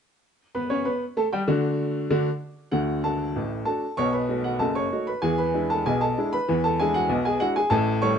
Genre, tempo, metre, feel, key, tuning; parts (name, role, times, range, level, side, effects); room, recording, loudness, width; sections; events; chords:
ragtime piano; 96 BPM; 2/4; straight; D major; A4 = 439 Hz
clear upright piano; solo; 0.5-8.2 s; F#1 to C#6; -22 LUFS; equal
light reverb; nothing above 10.6 kHz; -22 LUFS; side -7 dB against mid
0.2-2.7 A section; 2.7-8.2 B section
0.2 D; 4.0 B7; 5.2 E7